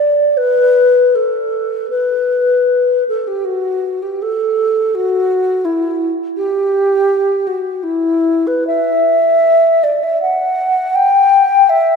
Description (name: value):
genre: classical, free, expressive piece for unaccompanied alto flute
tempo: 67-85 BPM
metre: 3/4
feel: rubato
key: unclear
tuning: A4 = 440 Hz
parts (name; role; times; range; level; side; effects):
- mellow hollow alto flute; solo; 0.0-12.0 s; E4 to G5; -12 LUFS; left 1 dB; none
room: wet church reverb, RT60 3.1 s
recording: minimal, uncompressed stereo recording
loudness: -12 LUFS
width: side -5 dB against mid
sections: 0.0-12.0 A section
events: none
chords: none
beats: 0.37 1.15 | 1.91 2.68 3.45 | 4.19 4.91 5.63 | 6.37 7.09 7.83 | 8.67 9.45 10.20 | 10.93 11.68